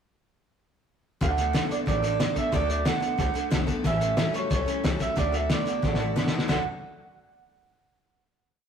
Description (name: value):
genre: rockabilly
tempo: 182 BPM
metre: 4/4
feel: straight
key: D major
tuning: A4 = 440 Hz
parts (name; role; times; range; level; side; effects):
- electric guitar through a small old amp; melody; 1.2-6.6 s; C#5 to F#5; -29 LUFS; right 6 dB; tape echo
- picked steel-string acoustic guitar; accompaniment; 1.2-6.6 s; A2 to A4; -32 LUFS; left 3 dB; none
- electric guitar through a small old amp; riff; 1.2-6.6 s; A2 to F#4; -35 LUFS; equal; none
- upright bass; bass; 1.2-6.6 s; A1 to D2; -30 LUFS; left 1 dB; none
- cloth-damped thuddy drum kit; drums; 1.2-6.6 s; crash cymbal, hi-hat, kick drum, snare drum, toms; -27 LUFS; left 1 dB; none
room: moderate stone room reverb, RT60 1.4 s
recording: rough rehearsal-room recording, warm saturation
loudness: -23 LUFS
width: side -7 dB against mid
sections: 1.2-6.5 A section; 6.5-7.8 final chord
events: drum fill 5.8-6.5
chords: 1.2 D; 3.8 A7; 5.2 D